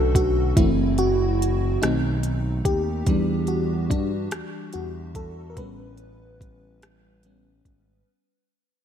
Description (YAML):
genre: slow six-eight R&B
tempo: 48 BPM (dotted quarters)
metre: 6/8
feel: straight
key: unclear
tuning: A4 = 442 Hz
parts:
  - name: FM electric piano with soft pad layer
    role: accompaniment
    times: 0.0-8.1 s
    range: D3 to B4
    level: -24 LUFS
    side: left 1 dB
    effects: chorus
  - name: smooth gliding synth bass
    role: bass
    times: 0.0-8.0 s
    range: F#1 to G2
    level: -26 LUFS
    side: right 1 dB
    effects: none
  - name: smooth R&B drum kit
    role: drums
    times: 0.1-7.8 s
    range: hi-hat, kick drum, rim click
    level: -25 LUFS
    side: right 1 dB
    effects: none
room: light reverb, digital ambience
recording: bright 1980s-style digital production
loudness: -20 LUFS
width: side -9 dB against mid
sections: 0.0-8.1 A section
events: fade-out 0.0-8.1; FM electric piano solo 0.0-8.1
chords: 0.0 Bm9; 0.6 F#m7b5; 1.8 B7b9; 3.1 Em7; 5.6 A9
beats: | 0.57 1.82 | 3.07 4.32 | 5.57 6.82